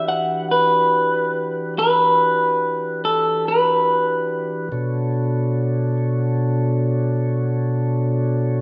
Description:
blues; 47 BPM (dotted quarters); 12/8; straight; A4 = 439 Hz
electric guitar through a small old amp; melody; 0.0-6.0 s; A4 to F#5; -20 LUFS; equal; spring reverb
mellow tonewheel organ; sustained chords; 0.0-8.6 s; B2 to C#5; -24 LUFS; equal; slow rotary speaker
moderate stone room reverb, RT60 1.1 s; band playing live in one room; -20 LUFS; mono
0.0-8.6 A section
0.0 Em9; 4.7 Bm9

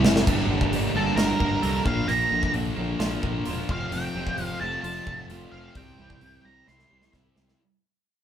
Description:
quiet-loud alternative rock; 131 BPM; 4/4; straight; G dorian; A4 = 440 Hz
thick fuzz guitar; riff; 0.0-7.6 s; F2 to F4; -27 LUFS; equal; distortion
growling fingered electric bass; bass; 0.0-7.5 s; E1 to C2; -31 LUFS; equal; overdrive
big rock drum kit; drums; 0.0-7.6 s; crash cymbal, hi-hat, kick drum, snare drum; -27 LUFS; equal
twelve-string electric guitar; arpeggios; 0.3-7.6 s; F2 to A4; -33 LUFS; right 4 dB
octave-fuzz lead guitar; melody; 1.0-7.1 s; A4 to C6; -28 LUFS; right 2 dB; distortion
moderate studio reverb, RT60 0.7 s; band playing live in one room; -23 LUFS; side -9 dB against mid
0.3-7.6 A section
drum fill 0.0, 6.7-7.6; fade-out 0.3-7.6; lead electric guitar solo 0.3-7.6
0.3 Gmadd9; 1.9 Bb; 3.7 F; 5.8 C

